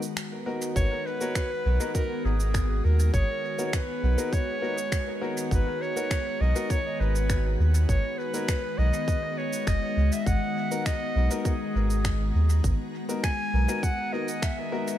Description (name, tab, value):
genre	ambient dub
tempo	101 BPM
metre	4/4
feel	straight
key	G# minor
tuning	A4 = 440 Hz
part	soft additive organ-like pad	sustained chords	0.0-15.0 s	D#3 to A#5	-33 LUFS	left 2 dB	ensemble chorus, built-in reverb, vintage 12-bit sampler grit
part	electronic shaker and finger snaps	drums	0.0-15.0 s	none	-37 LUFS	right 2 dB	studio reverb, dub echo
part	warm upright piano	stabs	0.5-15.0 s	B3 to A#4	-35 LUFS	left 3 dB	vintage 12-bit sampler grit, dub echo
part	clear clarinet	melody	0.8-15.0 s	G#4 to G#5	-31 LUFS	equal	dub echo
part	soft dub sub bass	bass	0.8-13.7 s	F#1 to D#2	-23 LUFS	equal	tube saturation
part	electronic kick drum	drums	0.8-14.5 s	none	-27 LUFS	equal	studio reverb
room	light reverb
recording	none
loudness	-24 LUFS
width	side -12 dB against mid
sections	0.8-15.0 A section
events	break 0.0-0.8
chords	0.0 G#m7